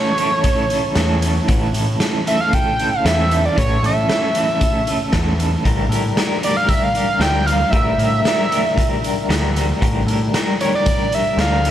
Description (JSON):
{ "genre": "psychedelic rock", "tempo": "115 BPM", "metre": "4/4", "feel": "straight", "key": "A phrygian dominant", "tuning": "A4 = 440 Hz", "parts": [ { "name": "overdriven synth lead", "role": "melody", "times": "0.0-11.7 s", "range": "C#5 to G5", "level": "-20 LUFS", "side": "right 2 dB", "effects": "distortion, tape echo" }, { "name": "electric guitar through a small old amp", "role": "riff", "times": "0.0-11.7 s", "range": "A2 to Bb4", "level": "-21 LUFS", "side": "left 1 dB", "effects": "tremolo" }, { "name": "raw garage drum kit", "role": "drums", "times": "0.2-11.7 s", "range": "hi-hat, kick drum, snare drum", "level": "-20 LUFS", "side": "equal", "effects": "none" }, { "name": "growling picked electric bass", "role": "bass", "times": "1.0-11.7 s", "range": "A1 to A2", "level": "-19 LUFS", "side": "equal", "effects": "overdrive" } ], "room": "light reverb, studio ambience", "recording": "none", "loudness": "-15 LUFS", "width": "side -11 dB against mid", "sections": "0.0-11.7 A section", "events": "none", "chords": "0.0 A; 5.7 Gm/A" }